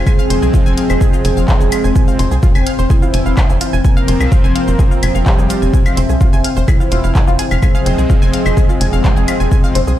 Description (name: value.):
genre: melodic techno.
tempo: 127 BPM.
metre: 4/4.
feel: straight.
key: F harmonic minor.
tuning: A4 = 443 Hz.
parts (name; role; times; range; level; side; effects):
evolving wavetable pad; sustained chords; 0.0-10.0 s; C3 to G5; -24 LUFS; left 3 dB; chorus, built-in reverb, sidechain pumping.
tight sequencer bass; bass; 0.0-10.0 s; F1 to C2; -15 LUFS; equal; sidechain pumping.
deep dark ambient pad; texture; 0.0-10.0 s; C4 to F5; -24 LUFS; left 2 dB; chorus, built-in reverb, sidechain pumping.
mellow synth brass; melody; 0.1-9.7 s; E3 to Bb4; -22 LUFS; right 2 dB; chorus, sidechain pumping, dub echo.
tight sequenced synth; arpeggios; 0.1-9.9 s; F4 to Ab6; -25 LUFS; left 1 dB; chorus, phaser, sidechain pumping, digital delay.
deep house drum kit; drums; 0.1-10.0 s; claves, handclaps, hi-hat, shaker; -24 LUFS; left 1 dB; none.
electronic kick drum; drums; 0.1-9.6 s; none; -12 LUFS; equal; none.
brassy analog pad; stabs; 0.2-9.8 s; F3 to C4; -22 LUFS; right 1 dB; chorus, sidechain pumping, digital delay.
room: digital ambience.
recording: played on a big sound system in a bare room, large studio reverb.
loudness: -10 LUFS.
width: side -12 dB against mid.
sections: 0.0-10.0 A section.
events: none.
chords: 0.0 Fm.